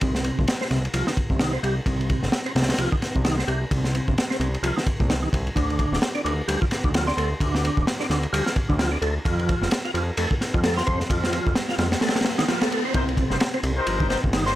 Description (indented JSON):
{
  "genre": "breakbeat, breaks",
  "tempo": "130 BPM",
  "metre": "4/4",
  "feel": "swing 58% on 16ths",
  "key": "C dorian",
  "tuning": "A4 = 440 Hz",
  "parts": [
    { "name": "tonewheel organ", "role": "riff", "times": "0.0-14.5 s", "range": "Bb2 to F4", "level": "-27 LUFS", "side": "equal", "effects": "chorus vibrato, fast rotary speaker, low-pass filter, tape echo" },
    { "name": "fat analog bass", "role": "bass", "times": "0.0-14.6 s", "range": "D1 to F2", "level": "-26 LUFS", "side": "equal", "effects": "none" },
    { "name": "crunchy breakbeat drum kit", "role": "drums", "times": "0.0-14.6 s", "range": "kick drum, ride cymbal, snare drum", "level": "-24 LUFS", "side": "equal", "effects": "none" },
    { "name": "soft synth bell", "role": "melody", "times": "7.1-11.0, 14.5 s", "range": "C6 to F6", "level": "-31 LUFS", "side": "equal", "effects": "chorus, phaser, old record sound, tape echo" },
    { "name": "riser", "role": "sound effects", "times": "11.1-12.9 s", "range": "none", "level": "-32 LUFS", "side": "equal", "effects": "none" },
    { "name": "clear brass ensemble", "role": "stabs", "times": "12.9-14.5 s", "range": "Eb4 to C5", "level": "-27 LUFS", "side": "left 3 dB", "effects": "vintage 12-bit sampler grit, low-pass filter, tape echo" }
  ],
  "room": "little or no reverb",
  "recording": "none",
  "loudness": "-21 LUFS",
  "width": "side -14 dB against mid",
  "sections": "0.0-12.9 A section; 12.9-14.6 B section",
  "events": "filter sweep on tonewheel organ 0.0-12.9; riser 11.1-12.9; drop 12.9-14.6",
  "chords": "0.0 Cm; 5.6 Dm; 9.2 F; 12.9 Cm7",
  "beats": "| 0.02 0.48 0.94 1.40 | 1.86 2.33 2.79 3.25 | 3.71 4.17 4.63 5.09 | 5.56 6.02 6.48 6.94 | 7.40 7.86 8.33 8.79 | 9.25 9.71 10.17 10.63 | 11.10 11.56 12.02 12.48 | 12.94 13.40 13.86 14.33"
}